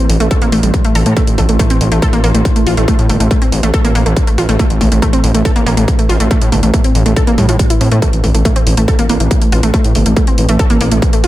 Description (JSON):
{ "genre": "driving peak-time techno", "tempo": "140 BPM", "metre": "4/4", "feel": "straight", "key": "unclear", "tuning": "A4 = 441 Hz", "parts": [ { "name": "analog pluck", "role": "riff", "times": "0.0-11.3 s", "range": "G3 to A4", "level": "-16 LUFS", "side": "equal", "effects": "chorus, tube saturation, cassette tape, sidechain pumping, analog delay" }, { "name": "metallic inharmonic drone", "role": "drone", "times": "0.0-11.3 s", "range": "A2 to E3", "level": "-20 LUFS", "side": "right 1 dB", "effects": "chorus, built-in reverb, sidechain pumping" }, { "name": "gritty driven synth bass", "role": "bass", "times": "0.1-11.3 s", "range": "G1 to A2", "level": "-14 LUFS", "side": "equal", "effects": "sidechain pumping" }, { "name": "electronic hi-hat", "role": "drums", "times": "0.1-11.3 s", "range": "none", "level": "-23 LUFS", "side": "equal", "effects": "sidechain pumping on hats" }, { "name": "electronic kick drum", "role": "drums", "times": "0.3-11.1 s", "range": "none", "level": "-13 LUFS", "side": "equal", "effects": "distortion" } ], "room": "digital ambience", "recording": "echo-heavy mix", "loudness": "-9 LUFS", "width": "side -15 dB against mid", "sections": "0.0-11.3 A section", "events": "none", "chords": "0.0 A5" }